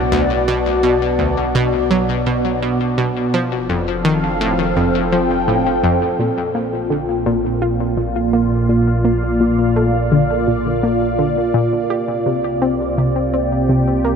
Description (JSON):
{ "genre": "ambient", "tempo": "84 BPM", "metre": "4/4", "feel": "straight", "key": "unclear", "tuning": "A4 = 440 Hz", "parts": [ { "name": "phased analog pad", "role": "sustained chords", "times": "0.0-14.2 s", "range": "Bb2 to G5", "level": "-17 LUFS", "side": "equal", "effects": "phaser, chorus" }, { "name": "analog pluck", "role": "riff", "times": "0.0-14.2 s", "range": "D2 to G4", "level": "-19 LUFS", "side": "left 1 dB", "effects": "chorus, ping-pong delay" }, { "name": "round analog bass", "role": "bass", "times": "0.0-14.2 s", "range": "F1 to C2", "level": "-27 LUFS", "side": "equal", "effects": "none" }, { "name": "bubbling stepped-filter texture", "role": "texture", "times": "0.0-6.2 s", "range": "D4 to D5", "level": "-30 LUFS", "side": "left 1 dB", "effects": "chorus, built-in reverb" } ], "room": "wet huge ambient reverb, RT60 9.2 s", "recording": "none", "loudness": "-15 LUFS", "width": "side -6 dB against mid", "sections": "0.0-6.2 A section; 6.2-14.2 B section", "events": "filter sweep on synth arpeggio sound 6.2-14.2", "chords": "0.0 Bm; 3.3 F7; 6.2 Bb; 11.9 Csus2" }